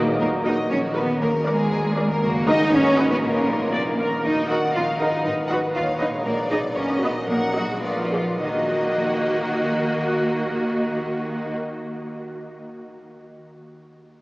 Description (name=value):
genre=cinematic, playful, whimsical film cue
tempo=100-120 BPM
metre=2/4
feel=straight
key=Eb minor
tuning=A4 = 441 Hz
part: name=rich studio viola section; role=accompaniment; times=0.0-11.6 s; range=Bb3 to Eb5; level=-26 LUFS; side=equal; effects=none
part: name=concert harp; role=arpeggios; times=0.0-12.3 s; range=Gb2 to Eb5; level=-30 LUFS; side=left 1 dB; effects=none
part: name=rich studio cello section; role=bass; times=0.0-11.6 s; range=Bb2 to Gb4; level=-24 LUFS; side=equal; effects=none
part: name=warm studio double bass section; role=bass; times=0.0-11.6 s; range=F1 to Eb2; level=-35 LUFS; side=equal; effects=none
part: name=warm studio violin section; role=second line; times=0.2-11.6 s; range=F4 to Gb5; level=-27 LUFS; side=equal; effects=none
part: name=rich studio violin section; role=melody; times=0.7-11.6 s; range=F4 to Gb5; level=-31 LUFS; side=equal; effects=none
room=wet cathedral reverb, RT60 6.4 s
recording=small speaker sound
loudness=-20 LUFS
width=side -22 dB against mid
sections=0.2-8.4 A section; 8.4-10.8 B section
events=slowing down 5.8-8.4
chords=0.2 Ebm; 1.2 Bb7/Eb; 2.2 Ebm/Gb; 2.7 Abm; 3.2 Bb; 4.2 Ebm; 5.3 Abm; 6.3 Bb7; 6.8 Bmaj7; 7.3 Ebm/Bb; 7.8 Bb7b9; 8.4 Ebm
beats=| 0.21 0.71 | 1.21 1.71 | 2.21 2.72 | 3.23 3.73 | 4.24 4.75 | 5.25 5.75 | 6.25 6.76 | 7.29 7.84 | 8.42 9.01 | 9.60 10.20